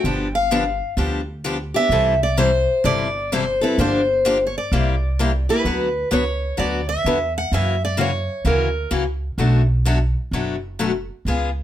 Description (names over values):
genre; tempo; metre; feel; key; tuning
acoustic string swing (jazz manouche); 128 BPM; 4/4; swing 66% on 8ths; D major; A4 = 439 Hz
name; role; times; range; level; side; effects
picked steel-string acoustic guitar; melody; 0.0-8.9 s; A#4 to G5; -21 LUFS; equal; plate reverb
picked steel-string acoustic guitar; accompaniment; 0.0-11.5 s; B2 to B4; -22 LUFS; left 3 dB; none
upright bass; bass; 0.0-11.6 s; F#1 to F#2; -22 LUFS; right 1 dB; none
room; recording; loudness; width
moderate studio reverb, RT60 0.6 s; none; -18 LUFS; side -11 dB against mid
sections
0.0-5.6 A section; 5.6-11.6 B section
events
none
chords
0.0 G7; 1.9 C6; 3.8 Gm7; 4.7 C9; 5.6 D69; 7.5 F#7; 9.4 Bm7